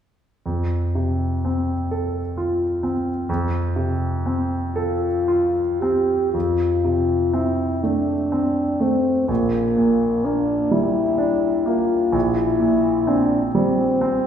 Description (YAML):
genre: classical, romantic duo for French horn and grand piano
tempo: 36-44 BPM (dotted quarters)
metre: 6/8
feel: rubato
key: F major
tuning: A4 = 439 Hz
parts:
  - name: clear concert grand piano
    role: accompaniment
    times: 0.5-14.3 s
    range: Bb1 to A4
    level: -21 LUFS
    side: right 2 dB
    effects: none
  - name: dark French horn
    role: melody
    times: 4.8-14.3 s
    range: Bb3 to G4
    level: -20 LUFS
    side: left 2 dB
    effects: none
room: wet recital hall reverb, RT60 1.6 s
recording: heard from further back in the room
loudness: -18 LUFS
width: side -8 dB against mid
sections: 0.5-6.3 A section; 6.3-14.3 B section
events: none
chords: 0.5 F; 9.3 Gm/Bb; 12.1 C7/Bb